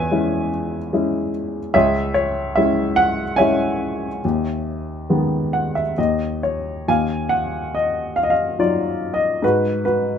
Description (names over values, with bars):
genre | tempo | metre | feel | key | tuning
classical, lyrical solo piano | 65-75 BPM | 3/4 | rubato | G# minor, Eb harmonic minor from 6.9 s | A4 = 439 Hz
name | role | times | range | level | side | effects
warm baby grand piano | solo | 0.0-10.2 s | C#2 to G#5 | -18 LUFS | left 1 dB | none
room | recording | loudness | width
light reverb | close, detailed microphones | -18 LUFS | side -8 dB against mid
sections
0.0-6.9 A section; 6.9-10.2 B section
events
grand piano fill 5.1-6.9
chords
0.0 E6; 1.7 C#m; 4.2 G#m/D#; 6.0 N.C.; 6.9 Ebmadd9; 9.4 Abm7